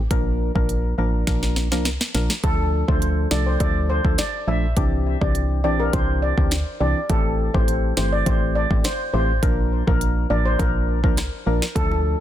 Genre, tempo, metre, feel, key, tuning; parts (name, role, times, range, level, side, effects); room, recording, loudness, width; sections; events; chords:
dancehall; 103 BPM; 4/4; straight; D minor; A4 = 441 Hz
woody FM bass; bass; 0.0-12.2 s; G1 to D2; -22 LUFS; equal
percussive organ stab; accompaniment; 0.1-12.2 s; E3 to Bb4; -25 LUFS; left 1 dB; chorus
afro-pop drum kit; drums; 0.1-11.9 s; hi-hat, kick drum, rim click, snare drum; -22 LUFS; equal
steel pan; melody; 2.4-11.9 s; A4 to E5; -26 LUFS; equal; ping-pong delay
bongos; percussion; 11.9-12.0 s; -38 LUFS; left 1 dB
little or no reverb; dense, heavily limited modern master; -18 LUFS; side -12 dB against mid
0.0-2.4 A section; 2.4-12.2 B section
drum fill 1.3-2.4
0.1 Bb; 2.4 Dm; 4.8 Cadd9; 7.1 Am7; 9.4 Bb